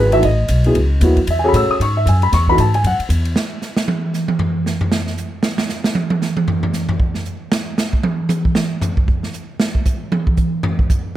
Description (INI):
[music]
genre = modal jazz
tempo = 231 BPM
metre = 4/4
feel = swing 58% on 8ths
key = unclear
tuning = A4 = 438 Hz
[part]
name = warm concert grand piano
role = accompaniment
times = 0.0-3.0 s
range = E3 to E6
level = -16 LUFS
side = left 1 dB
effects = none
[part]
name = upright bass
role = bass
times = 0.0-3.3 s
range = G#1 to A2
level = -15 LUFS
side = equal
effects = none
[part]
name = swinging big-band drum kit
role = drums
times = 0.1-11.0 s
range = hi-hat, kick drum, ride cymbal, snare drum, toms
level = -18 LUFS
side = right 1 dB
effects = none
[sound]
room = light reverb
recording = close, detailed microphones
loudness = -15 LUFS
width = side -13 dB against mid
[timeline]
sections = 0.0-3.4 A section; 3.4-11.2 A section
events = drum solo 3.4-11.2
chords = 0.0 Amaj9; 3.4 N.C.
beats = | 0.23 0.50 0.76 1.02 | 1.28 1.54 1.80 2.06 | 2.32 2.58 2.84 3.10 | 3.36 3.62 3.88 4.14 | 4.41 4.67 4.92 5.19 | 5.45 5.71 5.97 6.23 | 6.49 6.75 7.01 7.27 | 7.53 7.79 8.05 8.31 | 8.57 8.83 9.09 9.35 | 9.61 9.87 10.12 10.38 | 10.64 10.90